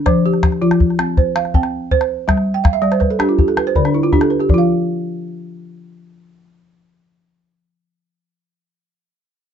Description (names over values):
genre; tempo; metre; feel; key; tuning
west african traditional, West African string and xylophone music; 108 BPM (dotted quarters); 12/8; straight; unclear; A4 = 436 Hz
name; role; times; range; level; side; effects
balafon; arpeggios; 0.0-8.3 s; D3 to G5; -15 LUFS; right 1 dB; none
calabash; percussion; 0.1-4.7 s; none; -16 LUFS; left 1 dB; none
room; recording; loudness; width
light reverb; dark, warm production, nothing above 8.0 kHz; -13 LUFS; side -8 dB against mid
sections
0.0-4.5 A section; 4.5-6.7 B section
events
balafon fill 2.6-4.5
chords
0.1 F5; 1.2 C5; 2.3 G5; 3.4 N.C.